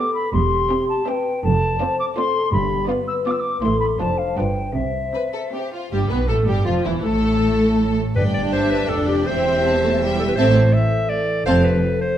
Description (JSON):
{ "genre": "quick classical-period movement for symphony orchestra", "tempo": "163 BPM", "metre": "3/4", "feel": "rubato", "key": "C major", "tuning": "A4 = 442 Hz", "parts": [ { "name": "warm studio violin section", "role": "melody", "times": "0.0-11.6 s", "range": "E4 to A5", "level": "-32 LUFS", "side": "left 3 dB", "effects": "none" }, { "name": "mellow hollow silver concert flute", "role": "second line", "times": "0.0-5.7 s", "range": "E5 to E6", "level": "-24 LUFS", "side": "left 3 dB", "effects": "none" }, { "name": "rich studio violin section", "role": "second line", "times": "0.0-11.6 s", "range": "E4 to F5", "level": "-30 LUFS", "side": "left 3 dB", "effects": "none" }, { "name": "warm studio viola section", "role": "accompaniment", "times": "0.0-11.6 s", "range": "E3 to D4", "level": "-25 LUFS", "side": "right 1 dB", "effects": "none" }, { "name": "mellow French horn section", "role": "sustained chords", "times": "0.0-12.2 s", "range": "D3 to C5", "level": "-25 LUFS", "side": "left 2 dB", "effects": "none" }, { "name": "rich studio double bass section", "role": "bass", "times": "0.3-11.8 s", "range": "E1 to C2", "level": "-24 LUFS", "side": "right 2 dB", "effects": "none" }, { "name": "warm studio cello section", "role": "bass", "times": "0.3-11.8 s", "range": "E2 to C3", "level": "-24 LUFS", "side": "right 2 dB", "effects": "none" }, { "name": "timpani", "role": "percussion", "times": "2.5-3.0, 8.2-8.7 s", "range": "G2", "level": "-28 LUFS", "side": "equal", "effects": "none" }, { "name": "bright clarinet", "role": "second line", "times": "5.9-12.2 s", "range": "E4 to E5", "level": "-22 LUFS", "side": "equal", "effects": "none" } ], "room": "wet recital hall reverb, RT60 1.7 s", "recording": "dark, warm production", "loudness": "-17 LUFS", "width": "side -10 dB against mid", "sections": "0.0-5.9 A section; 5.9-12.2 B section", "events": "none", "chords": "0.3 C/E; 1.4 Dm7/F; 2.5 G7; 3.6 Am; 4.0 Dm7/F; 4.4 G7; 4.8 C; 5.9 G13; 7.0 N.C.; 8.2 G5; 9.3 C/E; 10.4 Am; 11.5 F" }